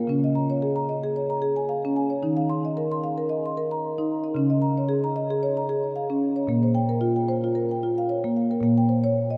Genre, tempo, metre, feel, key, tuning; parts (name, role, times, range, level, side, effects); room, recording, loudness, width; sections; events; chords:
world meditative, meditative tuned percussion; 113 BPM; 4/4; swing 55% on 16ths; Db lydian; A4 = 442 Hz
marimba with soft mallets; solo; 0.0-9.4 s; Bb2 to C6; -24 LUFS; equal; delay
wet huge ambient reverb, RT60 8.9 s; in a vast, echoing space; -24 LUFS; mono
0.0-8.6 A section
0.1 Db; 2.2 Eb5; 4.4 Db; 6.5 Bbm